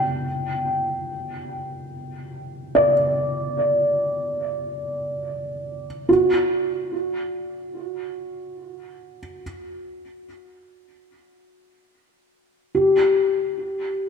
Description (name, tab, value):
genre	ambient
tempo	free time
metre	none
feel	none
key	unclear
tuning	A4 = 435 Hz
part	felt-muted upright piano	solo	0.0-14.1 s	F#4 to G5	-21 LUFS	equal	diffuse ambient delay
room	wet scoring stage reverb, RT60 1.9 s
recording	dark, warm production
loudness	-20 LUFS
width	side -6 dB against mid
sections	0.0-12.8 A section; 12.8-14.1 B section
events	none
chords	0.0 Dsus4; 6.1 N.C.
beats	free time